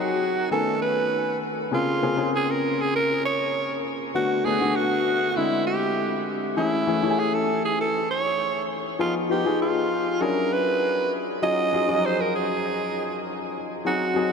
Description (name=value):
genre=pop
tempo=99 BPM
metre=4/4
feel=straight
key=unclear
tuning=A4 = 440 Hz
part: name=raspy alto saxophone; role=melody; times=0.0-14.3 s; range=E4 to Eb5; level=-24 LUFS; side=right 3 dB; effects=ping-pong delay
part: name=warm grand piano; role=accompaniment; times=0.0-14.3 s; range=Db3 to Ab5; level=-25 LUFS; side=left 4 dB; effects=wide subtle chorus
room=wet huge ambient reverb, RT60 6.7 s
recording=dreamy mix soaked in reverb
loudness=-22 LUFS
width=side -5 dB against mid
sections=0.0-14.3 A section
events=none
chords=0.0 Cm7b5; 0.5 Cb13; 1.7 Bbm9; 4.1 Cbm7; 5.4 E7alt; 6.6 Amaj7; 9.0 Fm7b5; 10.2 E13; 11.4 Ebm11